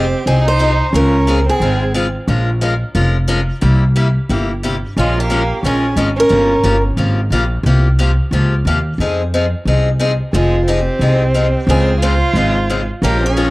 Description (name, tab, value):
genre	acoustic string swing (jazz manouche)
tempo	179 BPM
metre	4/4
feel	swing 62% on 8ths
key	F minor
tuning	A4 = 438 Hz
part	picked steel-string acoustic guitar	melody	0.0-1.9, 5.0-6.8, 10.3-13.5 s	F4 to C5	-18 LUFS	equal	cassette tape
part	warm violin	second line	0.0-1.9, 5.0-6.8, 10.3-13.5 s	Ab3 to F4	-19 LUFS	right 2 dB	none
part	picked steel-string acoustic guitar	accompaniment	0.0-13.5 s	C3 to Bb4	-19 LUFS	left 2 dB	none
part	upright bass	bass	0.0-13.5 s	F1 to F2	-15 LUFS	equal	none
room	light reverb, small room reverb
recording	home recording on cassette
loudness	-12 LUFS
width	side -20 dB against mid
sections	0.0-10.3 A section; 10.3-13.5 A section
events	none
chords	0.0 Fm9; 0.9 Dbmaj7; 2.3 Bbm7; 3.6 C7; 5.0 Bbm7; 6.3 Gm7b5; 7.7 C7sus4; 9.0 Fm7; 10.3 Fm9; 11.7 Dbmaj7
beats	0.27 0.60 | 0.94 1.27 1.61 1.95 | 2.28 2.62 2.95 3.29 | 3.62 3.96 4.29 4.63 | 4.97 5.30 5.64 5.97 | 6.31 6.64 6.98 7.32 | 7.65 7.99 8.32 8.66 | 9.00 9.33 9.67 10.00 | 10.34 10.67 11.01 11.35 | 11.68 12.02 12.35 12.69 | 13.02 13.36